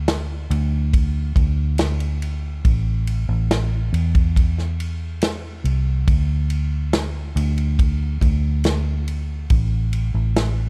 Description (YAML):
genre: pop ballad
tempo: 70 BPM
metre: 4/4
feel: straight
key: unclear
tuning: A4 = 440 Hz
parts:
  - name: vintage muted fingered electric bass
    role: bass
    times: 0.0-10.7 s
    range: A1 to E2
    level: -23 LUFS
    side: equal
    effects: none
  - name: natural country drum kit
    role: drums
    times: 0.1-10.6 s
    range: kick drum, ride cymbal, snare drum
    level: -22 LUFS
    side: equal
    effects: none
room: little or no reverb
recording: dark, warm production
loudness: -21 LUFS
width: mono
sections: 0.0-10.7 A section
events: none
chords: none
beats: 0.08 0.93 1.79 | 2.65 3.51 4.36 5.22 | 6.08 6.93 7.79 8.65 | 9.51 10.36